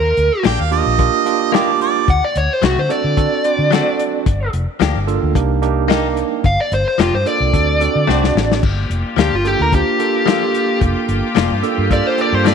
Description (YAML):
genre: straight-eighth soul blues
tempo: 110 BPM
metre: 4/4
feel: swing 53% on 16ths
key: G minor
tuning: A4 = 440 Hz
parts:
  - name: dark smooth lead guitar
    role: melody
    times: 0.0-12.5 s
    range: F4 to F#5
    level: -18 LUFS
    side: left 1 dB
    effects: overdrive
  - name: vintage muted fingered electric bass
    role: bass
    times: 0.0-12.5 s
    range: F1 to D3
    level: -18 LUFS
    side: left 1 dB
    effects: none
  - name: warm soul drum kit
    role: drums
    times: 0.2-12.5 s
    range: crash cymbal, hi-hat, kick drum, snare drum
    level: -19 LUFS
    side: left 5 dB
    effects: none
  - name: direct-recorded clean electric guitar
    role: stabs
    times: 0.4-12.5 s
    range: F3 to G4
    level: -24 LUFS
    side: left 11 dB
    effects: spring reverb
  - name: bright harmonica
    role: second line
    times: 0.5-2.1 s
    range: D5 to G5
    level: -18 LUFS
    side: right 8 dB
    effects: overdrive
  - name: tine electric piano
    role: accompaniment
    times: 0.7-12.5 s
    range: Bb3 to C5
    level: -20 LUFS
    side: right 14 dB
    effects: medium stereo tremolo
  - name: dark symphonic string section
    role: sustained chords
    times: 8.6-12.5 s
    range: Bb3 to G4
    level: -22 LUFS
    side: left 2 dB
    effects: none
room: light reverb, small room ambience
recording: 1960s-style stereo with parts hard left and right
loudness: -14 LUFS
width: side -7 dB against mid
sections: 0.0-8.6 A section; 8.6-12.5 B section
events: drum fill 8.1-8.6; lead electric guitar solo 8.6-12.5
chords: 0.0 Ebmaj7; 2.1 D7; 4.3 Gm7; 5.4 Cm7; 6.4 Gm7; 7.5 D7; 8.6 Gm7